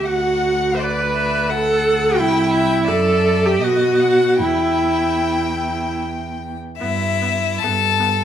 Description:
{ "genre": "classical, slow romantic movement for string quartet", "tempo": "69-90 BPM", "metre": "3/4", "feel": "rubato", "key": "E minor", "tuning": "A4 = 440 Hz", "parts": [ { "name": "clear violin", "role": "melody", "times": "0.0-8.2 s", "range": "D5 to A5", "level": "-24 LUFS", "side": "left 10 dB", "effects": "none" }, { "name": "rich violin", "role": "second line", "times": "0.0-8.2 s", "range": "E4 to G5", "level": "-26 LUFS", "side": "left 4 dB", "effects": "none" }, { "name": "rich viola", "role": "accompaniment", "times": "0.0-8.1 s", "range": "B3 to C5", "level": "-18 LUFS", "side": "right 1 dB", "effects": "none" }, { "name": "rich cello", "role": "bass", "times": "0.0-8.2 s", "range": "C2 to B2", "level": "-23 LUFS", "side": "right 3 dB", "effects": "none" } ], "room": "moderate recital hall reverb, RT60 1.2 s", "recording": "none", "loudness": "-15 LUFS", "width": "side -9 dB against mid", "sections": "0.0-6.8 A section; 6.8-8.2 B section", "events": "none", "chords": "0.1 Bm/D; 2.2 C; 2.9 Em11/F#; 3.6 B; 4.4 Em; 6.8 Em/G", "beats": "| 0.07 0.81 1.51 | 2.18 2.87 3.62 | 4.41 5.21 6.01 | 6.79 7.62" }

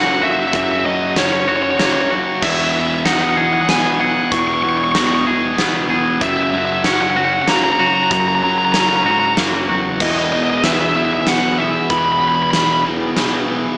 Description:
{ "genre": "post-rock", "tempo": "95 BPM", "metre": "3/4", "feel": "straight", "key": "E lydian", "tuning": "A4 = 439 Hz", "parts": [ { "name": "bluesy overdriven lead guitar", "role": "melody", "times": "0.0-12.8 s", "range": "C#5 to C#6", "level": "-17 LUFS", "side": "equal", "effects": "distortion, tape echo" }, { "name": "twangy electric guitar", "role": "arpeggios", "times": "0.0-10.0 s", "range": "E2 to G#4", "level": "-20 LUFS", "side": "equal", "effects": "spring reverb, tape echo" }, { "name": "sludgy distorted guitar", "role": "riff", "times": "0.0-13.8 s", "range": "E2 to F#3", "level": "-20 LUFS", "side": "equal", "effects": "overdrive, slapback echo" }, { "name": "growling picked electric bass", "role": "bass", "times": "0.0-13.6 s", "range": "B1 to G#2", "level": "-28 LUFS", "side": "equal", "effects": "overdrive" }, { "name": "huge arena drum kit", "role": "drums", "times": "0.5-13.3 s", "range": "crash cymbal, hi-hat, kick drum, snare drum", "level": "-20 LUFS", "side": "equal", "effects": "none" }, { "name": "hand-pumped harmonium", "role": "sustained chords", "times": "10.0-13.8 s", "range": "E3 to G#4", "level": "-25 LUFS", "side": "equal", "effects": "none" } ], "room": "moderate scoring stage reverb, RT60 1.9 s, small room ambience", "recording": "big arena sound, small speaker sound", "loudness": "-13 LUFS", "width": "side -28 dB against mid", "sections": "0.0-13.8 A section", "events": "none", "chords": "0.0 F#; 2.4 Emaj7; 6.2 F#; 10.0 E", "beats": "| 0.53 1.16 1.79 | 2.42 3.05 3.68 | 4.32 4.95 5.58 | 6.21 6.84 7.47 | 8.11 8.74 9.37 | 10.00 10.63 11.27 | 11.90 12.53 13.16" }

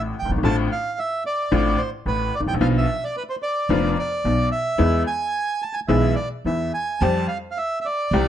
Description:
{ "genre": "tango", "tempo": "109 BPM", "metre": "4/4", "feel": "rubato", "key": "unclear", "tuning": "A4 = 440 Hz", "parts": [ { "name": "bandoneon", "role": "melody", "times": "0.0-8.3 s", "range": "B4 to A5", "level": "-24 LUFS", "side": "right 2 dB", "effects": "plate reverb" }, { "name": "bright upright piano", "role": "accompaniment", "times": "0.0-8.3 s", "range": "F1 to G#4", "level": "-22 LUFS", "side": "left 4 dB", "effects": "none" }, { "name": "upright bass", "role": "bass", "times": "0.0-8.3 s", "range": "F1 to F2", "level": "-23 LUFS", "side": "right 2 dB", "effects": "none" } ], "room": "light reverb", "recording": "nothing above 10.6 kHz", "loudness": "-20 LUFS", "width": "side -10 dB against mid", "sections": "0.0-8.3 A section", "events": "none", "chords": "0.4 Dm7/A; 2.6 Bdim; 4.8 E; 7.0 Fsus2", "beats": "| 0.43 0.97 1.52 2.06 | 2.61 3.16 3.70 4.25 | 4.80 5.35 5.90 6.46 | 7.02 7.58 8.14" }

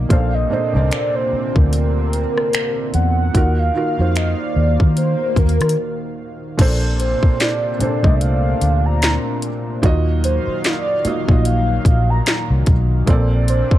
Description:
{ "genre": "contemporary R&B", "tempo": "74 BPM", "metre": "4/4", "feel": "swing 58% on 16ths", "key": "Bb major", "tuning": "A4 = 441 Hz", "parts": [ { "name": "felt-muted upright piano", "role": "accompaniment", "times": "0.0-13.8 s", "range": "Bb2 to Eb5", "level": "-23 LUFS", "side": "right 2 dB", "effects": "none" }, { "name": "chorused pulse-width pad", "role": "sustained chords", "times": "0.0-13.8 s", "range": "Bb2 to F5", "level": "-27 LUFS", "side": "equal", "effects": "sidechain pumping" }, { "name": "vintage muted fingered electric bass", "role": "bass", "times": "0.0-13.7 s", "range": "Bb1 to Eb3", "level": "-17 LUFS", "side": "equal", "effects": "none" }, { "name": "warm velvety synth lead", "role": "melody", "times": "0.1-13.8 s", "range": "Bb4 to Bb5", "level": "-23 LUFS", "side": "equal", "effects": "chorus" }, { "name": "trap drum kit", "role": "drums", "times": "0.1-13.8 s", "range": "crash cymbal, finger snaps, hi-hat, kick drum, rim click, snare drum", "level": "-16 LUFS", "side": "equal", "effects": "none" }, { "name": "swell", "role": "sound effects", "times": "4.2-5.8 s", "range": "none", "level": "-30 LUFS", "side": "left 2 dB", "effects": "none" } ], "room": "little or no reverb", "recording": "dark, warm production", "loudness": "-15 LUFS", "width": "side -13 dB against mid", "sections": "0.0-6.6 A section; 6.6-13.8 B section", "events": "swell 4.2-6.6; break 5.8-6.6", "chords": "0.1 Bbmaj9; 3.3 Ebmadd9; 6.6 Bbmaj9; 9.8 Ebmadd9; 13.1 Bbmaj9", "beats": "| 0.10 0.91 1.72 2.53 | 3.35 4.16 4.97 5.78 | 6.59 7.40 8.21 9.02 | 9.83 10.64 11.45 12.26 | 13.07" }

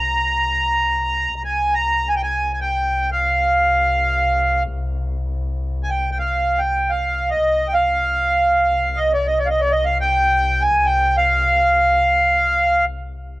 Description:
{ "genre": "Arabic maqam ensemble", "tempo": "free time", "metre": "none", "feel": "none", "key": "C maqam bayati", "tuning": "A4 = 441 Hz", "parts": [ { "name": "accordion", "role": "melody", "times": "0.0-12.8 s", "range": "D5-50c to Bb5", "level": "-16 LUFS", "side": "right 1 dB", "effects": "cassette tape" }, { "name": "dark double bass", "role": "drone", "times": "0.0-13.4 s", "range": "C2", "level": "-25 LUFS", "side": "left 1 dB", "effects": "stereo widening, cassette tape" } ], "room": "light reverb", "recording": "home recording on cassette, nothing above 10.7 kHz", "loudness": "-16 LUFS", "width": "side -19 dB against mid", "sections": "0.0-13.4 A section", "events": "none", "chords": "none", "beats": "free time" }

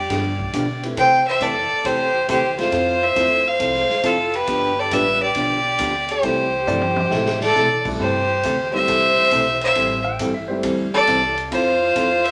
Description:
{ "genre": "country, western swing", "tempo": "136 BPM", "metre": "4/4", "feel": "swing 68% on 8ths", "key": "C major", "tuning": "A4 = 438 Hz", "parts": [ { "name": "clear fiddle", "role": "melody", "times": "0.0-12.3 s", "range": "A4 to G5", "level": "-21 LUFS", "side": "equal", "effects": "none" }, { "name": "dark fiddle", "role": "second line", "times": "0.0-12.3 s", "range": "F4 to C5", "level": "-26 LUFS", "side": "equal", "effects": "none" }, { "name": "upright bass", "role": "bass", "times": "0.0-12.3 s", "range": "F1 to C3", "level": "-34 LUFS", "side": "equal", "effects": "none" }, { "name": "hollow-body jazz guitar", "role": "accompaniment", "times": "0.1-12.1 s", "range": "C3 to A4", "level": "-29 LUFS", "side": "equal", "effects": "none" }, { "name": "swinging big-band drum kit", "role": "drums", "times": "0.1-12.3 s", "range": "crash cymbal, hi-hat, kick drum, ride cymbal, snare drum, toms", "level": "-34 LUFS", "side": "equal", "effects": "none" }, { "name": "dark upright piano", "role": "accompaniment", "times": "0.8-11.1 s", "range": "G3 to B4", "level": "-30 LUFS", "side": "equal", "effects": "none" }, { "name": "clean lap steel guitar", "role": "second line", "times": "6.7-10.8 s", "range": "C5 to G5", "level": "-31 LUFS", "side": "equal", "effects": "none" } ], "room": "wet large studio reverb, RT60 1.1 s", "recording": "none", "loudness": "-19 LUFS", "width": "mono", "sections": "0.0-8.0 A section; 8.0-12.3 B section", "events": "drum fill 6.7-7.6", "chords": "0.0 G7; 1.0 C6; 2.7 Fmaj7; 4.5 G7; 6.2 C6; 9.8 Am7; 11.5 Fmaj7", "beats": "0.10 0.53 | 0.97 1.41 1.85 2.29 | 2.72 3.16 3.60 4.04 | 4.48 4.92 5.36 5.79 | 6.23 6.67 7.11 7.55 | 7.99 8.43 8.87 9.31 | 9.75 10.19 10.63 11.07 | 11.51 11.95" }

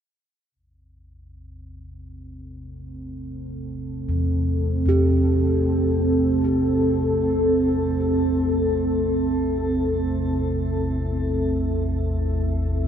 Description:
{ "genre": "dark ambient drone", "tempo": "free time", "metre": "none", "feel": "none", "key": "A minor", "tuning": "A4 = 439 Hz", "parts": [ { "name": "deep dark ambient pad", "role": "sustained chords", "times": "3.0-12.9 s", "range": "C4 to E5", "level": "-22 LUFS", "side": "right 1 dB", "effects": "chorus, built-in reverb, shimmer reverb" }, { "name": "deep rumbling drone", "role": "drone", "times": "1.0-12.9 s", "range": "A1 to E2", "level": "-29 LUFS", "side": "left 1 dB", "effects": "built-in reverb, lush chorus" }, { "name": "gamelan-type bossed gongs", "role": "arpeggios", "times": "4.1-11.1 s", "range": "E2 to G4", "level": "-25 LUFS", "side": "left 1 dB", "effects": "ping-pong delay" } ], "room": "wet huge ambient reverb, RT60 8.3 s", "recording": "none", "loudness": "-20 LUFS", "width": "side -8 dB against mid", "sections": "0.6-12.9 A section", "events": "fade-in on synth drone 0.6-12.9", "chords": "0.6 Am", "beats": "free time" }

